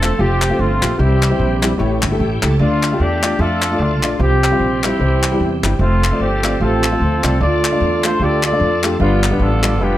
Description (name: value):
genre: uptempo gospel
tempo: 150 BPM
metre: 4/4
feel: swing 58% on 8ths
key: F major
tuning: A4 = 439 Hz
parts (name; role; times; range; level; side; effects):
- mellow horn section; melody; 0.0-10.0 s; A3 to D5; -19 LUFS; equal; none
- warm grand piano; accompaniment; 0.0-10.0 s; G2 to E5; -20 LUFS; left 1 dB; none
- bright tonewheel organ; sustained chords; 0.0-10.0 s; E3 to A5; -27 LUFS; right 2 dB; slow rotary speaker, chorus vibrato
- upright bass; bass; 0.0-10.0 s; E1 to F2; -17 LUFS; equal; none
- group handclap; percussion; 0.0-9.7 s; none; -21 LUFS; left 2 dB; none
room: light reverb, small room reverb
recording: none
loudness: -13 LUFS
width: side -14 dB against mid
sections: 0.0-10.0 A section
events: tonewheel organ fill 1.8-2.6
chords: 0.0 F; 1.0 C; 1.8 A7; 2.6 Dm; 4.2 Csus4; 5.0 C; 5.8 F; 7.4 Dm; 9.0 G7